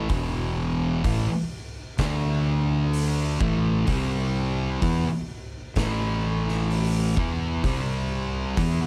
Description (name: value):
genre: stoner and doom metal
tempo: 64 BPM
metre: 4/4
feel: straight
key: unclear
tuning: A4 = 440 Hz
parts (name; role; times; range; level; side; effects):
- thick fuzz guitar; riff; 0.0-8.8 s; E2 to E4; -32 LUFS; equal; distortion
- thick fuzz guitar; riff; 0.0-8.8 s; E2 to E4; -30 LUFS; equal; distortion
- fuzz fingered electric bass; bass; 0.0-8.8 s; E1 to E2; -30 LUFS; equal; overdrive
- oversized low-tuned drum kit; drums; 0.1-8.8 s; hi-hat, kick drum, snare drum; -33 LUFS; equal; none
room: studio ambience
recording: dark, warm production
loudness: -25 LUFS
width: mono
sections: 0.0-8.9 A section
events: none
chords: 0.0 E5; 2.0 D5; 3.4 A5; 3.9 C5; 5.8 A5; 7.2 C5